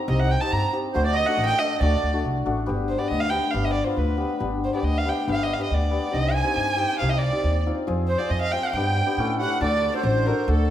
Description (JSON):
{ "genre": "klezmer", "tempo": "138 BPM", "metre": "2/4", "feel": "straight", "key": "G phrygian dominant", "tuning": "A4 = 441 Hz", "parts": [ { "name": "dark violin", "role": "melody", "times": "0.1-10.7 s", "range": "A4 to Bb5", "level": "-26 LUFS", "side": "right 1 dB", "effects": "none" }, { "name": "accordion", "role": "second line", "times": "0.1-2.2, 6.1-10.7 s", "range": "A4 to Bb5", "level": "-29 LUFS", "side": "right 4 dB", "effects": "light tremolo tuning" }, { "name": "hammered dulcimer", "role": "accompaniment", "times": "0.1-10.6 s", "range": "A3 to A4", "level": "-27 LUFS", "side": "left 3 dB", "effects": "none" }, { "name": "upright bass", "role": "bass", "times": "0.1-10.7 s", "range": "G1 to A2", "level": "-25 LUFS", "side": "equal", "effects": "none" } ], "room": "moderate recital hall reverb, RT60 1.5 s", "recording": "none", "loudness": "-21 LUFS", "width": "side -11 dB against mid", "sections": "0.0-2.7 A section; 2.7-9.6 B section; 9.6-10.7 C section", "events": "none", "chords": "0.0 Cm; 0.9 D; 2.7 G; 6.1 Cm; 7.9 Fm; 8.7 G; 9.2 A7; 9.6 D" }